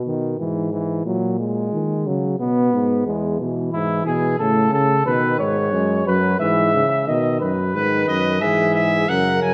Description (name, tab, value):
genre	classical, imitative canzona for brass ensemble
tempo	90 BPM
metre	3/4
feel	straight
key	E major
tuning	A4 = 440 Hz
part	mellow trombone	accompaniment	0.0-9.5 s	C#3 to B3	-25 LUFS	equal	none
part	dark euphonium	bass	0.0-9.5 s	E2 to D#3	-24 LUFS	equal	none
part	warm flugelhorn	second line	3.7-9.5 s	E4 to E5	-23 LUFS	equal	none
part	bright trumpet	melody	7.7-9.5 s	B4 to G#5	-22 LUFS	equal	none
room	wet scoring stage reverb, RT60 1.6 s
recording	none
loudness	-20 LUFS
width	mono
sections	0.0-9.5 A section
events	none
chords	0.4 E/G#; 1.1 F#/A#; 2.4 G#m; 3.1 E; 4.4 A; 5.1 B; 6.4 E/G#; 7.1 B; 8.4 E/G#